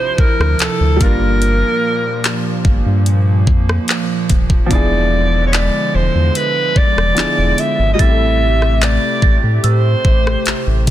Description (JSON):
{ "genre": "contemporary R&B", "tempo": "73 BPM", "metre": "4/4", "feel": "straight", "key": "unclear", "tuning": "A4 = 440 Hz", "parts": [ { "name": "warm alto saxophone", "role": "melody", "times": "0.0-10.8 s", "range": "A4 to E5", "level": "-18 LUFS", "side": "equal", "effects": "none" }, { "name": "clear grand piano", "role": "accompaniment", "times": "0.0-10.9 s", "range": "B2 to C5", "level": "-23 LUFS", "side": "equal", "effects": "none" }, { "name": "hollow soft pad", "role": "sustained chords", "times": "0.0-10.9 s", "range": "Bb2 to G4", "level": "-22 LUFS", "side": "right 2 dB", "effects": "chorus" }, { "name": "impact", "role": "sound effects", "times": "0.0-1.4 s", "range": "none", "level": "-47 LUFS", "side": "equal", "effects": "none" }, { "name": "round analog bass", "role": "bass", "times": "0.2-10.9 s", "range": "Eb1 to A2", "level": "-15 LUFS", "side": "equal", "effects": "none" }, { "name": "trap drum kit", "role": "drums", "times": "0.2-10.9 s", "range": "handclaps, hi-hat, kick drum, rim click", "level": "-16 LUFS", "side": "equal", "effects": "soft clipping on snare" }, { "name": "small celesta", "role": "texture", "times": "5.5-10.9 s", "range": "E6 to B6", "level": "-26 LUFS", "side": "right 10 dB", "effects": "stereo widening, tape echo" } ], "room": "little or no reverb", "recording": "dense, heavily limited modern master", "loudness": "-12 LUFS", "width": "side -13 dB against mid", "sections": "0.0-10.9 A section", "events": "impact 0.0-1.4", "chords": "0.0 Dm9; 1.0 Gm7; 4.7 E7b9; 8.0 Am7" }